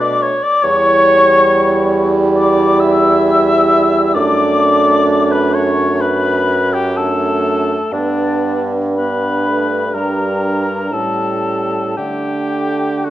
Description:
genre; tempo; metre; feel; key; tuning
classical, slow romantic movement for wind quintet; 55-72 BPM; 4/4; rubato; D major; A4 = 439 Hz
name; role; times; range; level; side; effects
hollow concert flute; melody; 0.0-13.1 s; D5 to E6; -20 LUFS; left 4 dB; none
warm oboe; second line; 0.0-13.1 s; D4 to E5; -16 LUFS; left 1 dB; none
clear French horn; accompaniment; 0.0-13.1 s; G3 to B3; -20 LUFS; equal; none
mellow clarinet; accompaniment; 0.0-13.1 s; C#4 to E4; -20 LUFS; right 5 dB; none
clear bassoon; bass; 0.0-13.1 s; E2 to D3; -19 LUFS; right 1 dB; none
room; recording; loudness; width
wet recital hall reverb, RT60 1.4 s; worn, warbling old tape, cassette tape, warbly pitch drift; -12 LUFS; side -14 dB against mid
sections
0.0-13.1 A section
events
none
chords
0.0 Bm7; 0.6 Em; 4.2 D/F#; 7.9 G; 9.9 Gm; 10.9 A7; 12.0 D5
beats
| 0.64 1.49 2.37 3.26 | 4.16 5.10 6.02 6.97 | 7.92 8.97 9.94 10.92 | 11.99 13.06

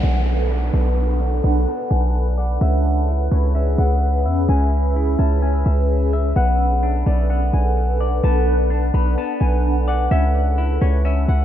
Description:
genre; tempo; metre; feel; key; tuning
hip hop; 128 BPM; 4/4; half-time; B dorian; A4 = 439 Hz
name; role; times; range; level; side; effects
concert harp; melody; 0.0-11.4 s; C#5 to B5; -28 LUFS; left 2 dB; low-pass filter, tape echo
shimmering ambient pad; sustained chords; 0.0-11.4 s; C#4 to F#5; -24 LUFS; right 1 dB; chorus, built-in reverb, phaser, low-pass filter
semi-hollow electric guitar; arpeggios; 0.0-11.4 s; B3 to E5; -30 LUFS; left 8 dB; low-pass filter, tape echo
warm 808-style bass; bass; 0.0-11.4 s; B1 to E2; -17 LUFS; equal; none
downlifter; sound effects; 0.0-2.6 s; none; -32 LUFS; equal; none
room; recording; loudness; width
little or no reverb; rough home demo mix; -16 LUFS; side -11 dB against mid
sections
0.0-11.4 A section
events
filter sweep 0.0-11.4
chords
0.0 Bm7; 2.6 C#m7; 6.4 Bm7; 10.1 C#m7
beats
0.27 | 0.74 1.21 1.68 2.14 | 2.61 3.08 3.55 4.02 | 4.49 4.96 5.42 5.89 | 6.36 6.83 7.30 7.77 | 8.24 8.71 9.18 9.64 | 10.11 10.58 11.05

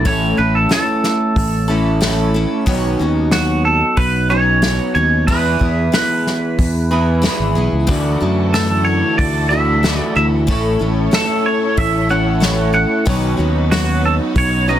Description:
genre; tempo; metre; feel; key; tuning
folk rock and heartland rock; 92 BPM; 4/4; straight; unclear; A4 = 441 Hz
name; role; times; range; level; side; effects
twangy electric guitar; melody; 0.0-14.8 s; F#4 to F#5; -18 LUFS; right 2 dB; lush chorus, plate reverb
picked steel-string acoustic guitar; accompaniment; 0.0-14.8 s; A2 to A4; -22 LUFS; left 6 dB; plate reverb
electric guitar through a small old amp; riff; 0.0-14.8 s; A2 to D5; -20 LUFS; right 3 dB; analog chorus
fingered electric bass; bass; 0.0-14.8 s; G#1 to F#2; -18 LUFS; equal; none
unplugged drum kit; drums; 0.1-14.5 s; hi-hat, kick drum, snare drum; -18 LUFS; left 1 dB; none
rich studio string section; sustained chords; 7.9-14.8 s; C#4 to C#5; -27 LUFS; right 1 dB; plate reverb
room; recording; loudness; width
light reverb; dense, heavily limited modern master; -13 LUFS; side -11 dB against mid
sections
0.0-14.8 A section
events
none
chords
0.1 A; 2.7 Badd9; 5.3 E; 7.9 Dadd9; 10.5 A; 13.1 Badd9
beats
| 0.06 0.71 1.37 2.02 | 2.67 3.33 3.98 4.63 | 5.28 5.94 6.59 7.24 | 7.89 8.54 9.19 9.83 | 10.48 11.13 11.77 12.42 | 13.06 13.71 14.35

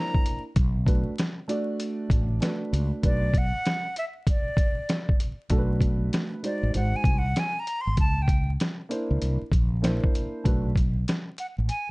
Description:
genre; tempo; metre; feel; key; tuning
hip hop, jazz-hop; 97 BPM; 4/4; swing 64% on 16ths; B dorian; A4 = 440 Hz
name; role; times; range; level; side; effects
breathy silver concert flute; melody; 0.0-11.9 s; D5 to B#5; -30 LUFS; equal; slapback echo
dark concert grand piano; accompaniment; 0.0-10.7 s; G#3 to D5; -30 LUFS; right 1 dB; none
trip hop sampler-style drum kit; drums; 0.1-11.9 s; hi-hat, kick drum, snare drum; -24 LUFS; equal; none
mellow fretless electric bass; bass; 0.6-11.7 s; G#1 to C#2; -25 LUFS; equal; none
room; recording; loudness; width
little or no reverb; dark, warm production, vinyl crackle, nothing above 10.4 kHz; -23 LUFS; side -25 dB against mid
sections
0.0-5.5 A section; 5.5-11.9 B section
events
flute solo 5.5-11.9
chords
0.0 C9; 0.6 Bm7; 6.7 G#7; 8.0 C#dim7; 9.2 C9; 10.5 Bm7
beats
| 0.56 1.18 1.80 2.42 | 3.04 3.65 4.27 4.89 | 5.51 6.13 6.75 7.37 | 7.98 8.60 9.22 9.84 | 10.46 11.08 11.70

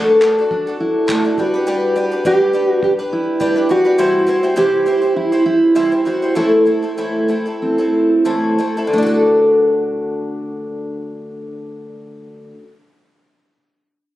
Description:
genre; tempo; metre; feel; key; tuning
acoustic pop; 88-104 BPM; 4/4; swing 55% on 16ths; D mixolydian; A4 = 440 Hz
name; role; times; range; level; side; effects
fingerpicked steel-string acoustic guitar; melody; 0.0-12.5 s; C4 to A4; -18 LUFS; right 2 dB; none
picked twelve-string acoustic guitar; accompaniment; 0.0-12.7 s; A2 to C5; -16 LUFS; left 1 dB; none
cloth-damped thuddy drum kit; drums; 0.2-3.6 s; handclaps, kick drum; -27 LUFS; equal; none
room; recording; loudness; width
light reverb; recorded on a phone in the room, studio reverb, compression; -13 LUFS; side -14 dB against mid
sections
0.0-8.9 A section; 8.9-11.6 B section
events
slowing down 4.0-8.9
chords
0.0 D; 1.4 G; 4.0 C; 6.4 Am; 8.9 D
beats
0.51 1.09 | 1.67 2.25 2.83 3.40 | 3.98 4.57 5.15 5.75 | 6.35 6.97 7.60 8.25 | 8.92 9.60 10.29 10.97

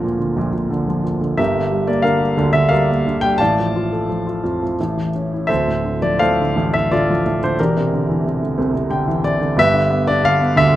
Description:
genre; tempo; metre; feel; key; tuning
classical, lyrical solo piano; 88 BPM; 3/4; uneven beats, rubato; D minor; A4 = 439 Hz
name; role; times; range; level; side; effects
warm grand piano; solo; 0.0-10.8 s; D1 to A5; -15 LUFS; equal; none
room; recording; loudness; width
light reverb; close, detailed microphones; -15 LUFS; side -13 dB against mid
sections
0.0-10.8 A section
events
grand piano fill 8.6-9.6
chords
0.0 Bb/D; 1.4 Gm; 3.4 Dm/A; 4.8 A; 5.5 Dm7; 7.6 Cadd9/E; 9.6 G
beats
0.05 0.72 | 1.39 2.05 2.71 | 3.40 4.09 4.78 | 5.49 6.19 6.90 | 7.58 8.25 8.91 | 9.57 10.23

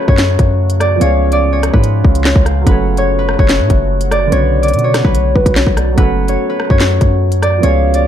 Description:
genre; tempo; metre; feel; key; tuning
hip hop, drill; 145 BPM; 4/4; half-time; F# harmonic minor; A4 = 438 Hz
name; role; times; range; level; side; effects
concert harp; melody; 0.0-8.1 s; B4 to D5; -17 LUFS; left 2 dB; ping-pong delay
dark concert grand piano; accompaniment; 0.0-8.1 s; C#3 to C#5; -21 LUFS; right 7 dB; none
deep dark ambient pad; sustained chords; 0.0-8.1 s; C#3 to F#4; -23 LUFS; right 1 dB; chorus, built-in reverb
hard-hitting 808-style bass; bass; 0.1-8.1 s; F#1 to B2; -14 LUFS; equal; none
drill drum kit; drums; 0.1-8.0 s; handclaps, hi-hat, kick drum, rim click, snare drum; -14 LUFS; equal; none
hollow clarinet-like synth lead; second line; 1.0-8.0 s; B4 to F#5; -22 LUFS; left 2 dB; chorus, phaser, ping-pong delay
room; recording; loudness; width
little or no reverb; dark, warm production; -10 LUFS; side -10 dB against mid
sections
0.0-8.1 A section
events
none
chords
0.0 F#m; 1.0 C#7; 2.7 F#m; 4.3 Bmadd9; 6.0 F#m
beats
0.18 0.60 | 1.01 1.43 1.84 2.25 | 2.67 3.08 3.49 3.91 | 4.32 4.74 5.15 5.56 | 5.98 6.39 6.80 7.22 | 7.63 8.05

